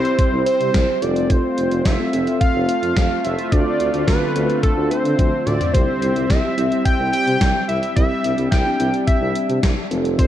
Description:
synth-pop; 108 BPM; 4/4; straight; C major; A4 = 440 Hz
fat analog lead; melody; 0.0-10.3 s; A4 to G5; -21 LUFS; equal; tape echo
mellow tine electric piano; accompaniment; 0.0-10.3 s; C4 to A4; -24 LUFS; right 1 dB; medium stereo tremolo
sweeping resonant pad; sustained chords; 0.0-10.3 s; D3 to E5; -25 LUFS; left 1 dB; chorus
warm tuba; bass; 0.0-10.3 s; F1 to D3; -24 LUFS; equal
gated 80s digital drum machine; drums; 0.1-10.3 s; hi-hat, kick drum, snare drum, toms; -20 LUFS; equal; gated reverb, gated reverb snare
moderate concert hall reverb, RT60 2.2 s; dark, warm production; -16 LUFS; side -11 dB against mid
0.0-10.3 A section
drum fill 5.2-5.7
0.0 C; 1.0 F; 3.5 Dm7; 5.7 C
0.19 0.74 | 1.30 1.85 2.41 2.97 | 3.52 4.08 4.63 5.19 | 5.74 6.30 6.86 7.41 | 7.97 8.52 9.08 9.63 | 10.19

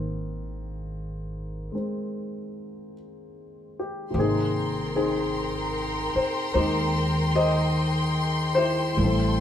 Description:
jazz ballad; 50 BPM; 4/4; swing 66% on 8ths; Ab major; A4 = 441 Hz
dark concert grand piano; accompaniment; 0.0-9.4 s; C3 to Eb5; -27 LUFS; left 1 dB
upright bass; bass; 0.0-9.4 s; Ab1 to Eb2; -27 LUFS; equal
warm studio string section; sustained chords; 4.1-9.4 s; A4 to C6; -29 LUFS; left 2 dB
moderate studio reverb, RT60 0.8 s; band playing live in one room; -23 LUFS; side -10 dB against mid
0.0-4.2 A section; 4.2-9.4 A section
0.0 Abmaj9
0.52 1.73 2.94 | 4.15 5.36 6.57 7.78 | 8.98

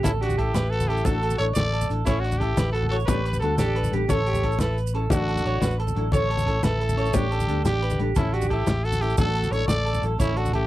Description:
highlife guitar band; 118 BPM (dotted quarters); 12/8; straight; A mixolydian; A4 = 441 Hz
growling trumpet; melody; 0.0-10.7 s; E4 to D5; -28 LUFS; equal
raspy alto saxophone; second line; 0.0-10.7 s; C#4 to A4; -34 LUFS; left 6 dB
electric guitar through a small old amp; arpeggios; 0.0-10.7 s; G4 to C#5; -30 LUFS; right 5 dB; slapback echo
fingered electric bass; bass; 0.0-10.7 s; A1 to D2; -25 LUFS; equal
warm soul drum kit; drums; 0.0-10.6 s; hi-hat, kick drum, snare drum; -28 LUFS; equal
congas; percussion; 0.0-10.5 s; -29 LUFS; left 2 dB
nylon-string guitar; accompaniment; 0.1-10.6 s; F#3 to A4; -32 LUFS; left 5 dB
maracas; percussion; 0.1-10.5 s; -40 LUFS; right 13 dB
little or no reverb; dry, close 1970s-style studio recording; -21 LUFS; side -15 dB against mid
0.0-10.7 A section
0.0 A; 1.1 Dadd9/A; 2.1 A; 3.1 Gadd9/A; 4.1 A; 5.1 Dadd9/A; 6.1 A; 7.1 Gadd9/A; 8.2 A; 9.2 Dadd9/A
| 0.04 0.55 1.05 1.56 | 2.07 2.58 3.08 3.59 | 4.10 4.61 5.11 5.62 | 6.13 6.64 7.14 7.65 | 8.16 8.67 9.18 9.69 | 10.20

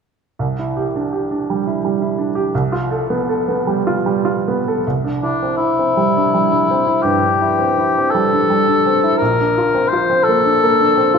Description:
classical, impressionist duo for cor anglais and grand piano; 47-58 BPM (dotted quarters); 12/8; rubato; C major; A4 = 440 Hz
clear baby grand piano; accompaniment; 0.4-11.2 s; Bb1 to A4; -17 LUFS; right 3 dB
mellow cor anglais; melody; 5.2-11.2 s; D4 to C5; -15 LUFS; left 4 dB
wet recital hall reverb, RT60 1.4 s; minimal, uncompressed stereo recording; -14 LUFS; side -6 dB against mid
0.4-4.8 A section; 4.8-11.2 B section
0.4 Cadd9; 2.5 G9/C; 4.8 Cadd9; 9.2 Bbadd9
| 0.38 1.47 2.52 3.63 | 4.84 5.95 7.03 8.12 | 9.20 10.26

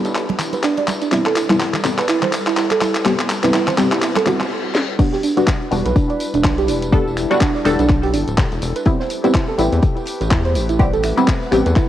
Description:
deep house; 124 BPM; 4/4; swing 57% on 16ths; E minor; A4 = 440 Hz
warbly tape-like pad; sustained chords; 0.0-11.9 s; G3 to F#5; -28 LUFS; left 2 dB; chorus, built-in reverb, sidechain pumping
filtered dub chord stab; stabs; 0.0-11.9 s; G3 to A4; -20 LUFS; left 1 dB; phaser, analog chorus, cassette tape, sidechain pumping, tape echo
rubbery square bass; bass; 0.0-11.7 s; D1 to E2; -23 LUFS; left 1 dB; tube saturation, sidechain pumping, high-pass filter
house drum kit; drums; 0.0-11.9 s; crash cymbal, finger snaps, handclaps, hi-hat, snare drum, tambourine; -23 LUFS; left 1 dB; cassette tape
open jazz drum kit; drums; 0.2-11.9 s; hi-hat, snare drum; -34 LUFS; left 2 dB
congas; percussion; 0.3-4.5 s; -27 LUFS; right 6 dB
soft round pluck; arpeggios; 0.5-11.9 s; D4 to D5; -21 LUFS; right 5 dB; wide subtle chorus, sidechain pumping, tape echo
reverse cymbal; sound effects; 4.4-5.0 s; -31 LUFS; left 6 dB
electronic kick drum; drums; 5.0-11.9 s; -16 LUFS; left 1 dB; cassette tape
moderate lush hall reverb, RT60 2.4 s; home recording on cassette; -15 LUFS; side -12 dB against mid
0.0-5.0 A section; 5.0-11.9 B section
build-up 0.0-5.0; drum fill 0.0-4.5, 4.7; filter sweep on synth stab 0.0-5.0; filter sweep on synth arpeggio sound 0.0-5.0; reverse cymbal 4.4-5.0; stop 4.5-5.0; drop 5.0-11.9
0.0 Em7; 1.1 Am9; 5.0 Em7; 8.9 Am9
0.15 0.64 | 1.12 1.60 2.09 2.57 | 3.06 3.54 4.02 4.51 | 4.99 5.47 5.96 6.44 | 6.93 7.41 7.89 8.38 | 8.86 9.35 9.83 10.31 | 10.80 11.28 11.76

